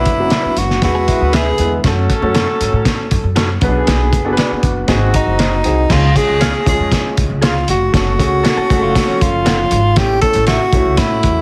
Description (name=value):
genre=uptempo 1960s-style soul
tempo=118 BPM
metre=4/4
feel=straight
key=unclear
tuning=A4 = 440 Hz
part: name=breathy tenor saxophone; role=melody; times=0.0-1.7, 5.2-11.4 s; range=D#4 to A4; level=-19 LUFS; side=equal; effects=plate reverb
part: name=mellow horn section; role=second line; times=0.0-5.6 s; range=D3 to B4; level=-24 LUFS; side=equal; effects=plate reverb
part: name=warm grand piano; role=accompaniment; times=0.0-11.4 s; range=F#3 to F#5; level=-23 LUFS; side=equal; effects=plate reverb
part: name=upright bass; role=bass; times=0.0-11.4 s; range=E#1 to A2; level=-20 LUFS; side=equal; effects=none
part: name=cloth-damped thuddy drum kit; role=drums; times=0.1-11.4 s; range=crash cymbal, hi-hat, kick drum, snare drum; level=-19 LUFS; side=equal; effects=none
part: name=electric guitar through a small old amp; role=stabs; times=0.3-10.6 s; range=D4 to F#5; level=-28 LUFS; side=equal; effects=spring reverb, plate reverb
part: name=direct-recorded clean electric guitar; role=riff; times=0.9-1.8, 8.6-9.8 s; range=D3 to A4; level=-25 LUFS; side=equal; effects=phaser
room=light reverb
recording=heavily compressed radio sound, multiband compression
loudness=-14 LUFS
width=mono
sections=0.0-5.9 A section; 5.9-11.4 B section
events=none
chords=0.0 Bm; 0.8 E; 1.8 F#m; 3.6 Bm; 4.9 G#7; 5.9 C#; 7.9 F#m; 10.0 A7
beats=0.32 0.82 1.33 | 1.84 2.35 2.85 3.36 | 3.87 4.38 4.88 5.39 | 5.90 6.41 6.92 7.42 | 7.93 8.44 8.95 9.46 | 9.96 10.47 10.98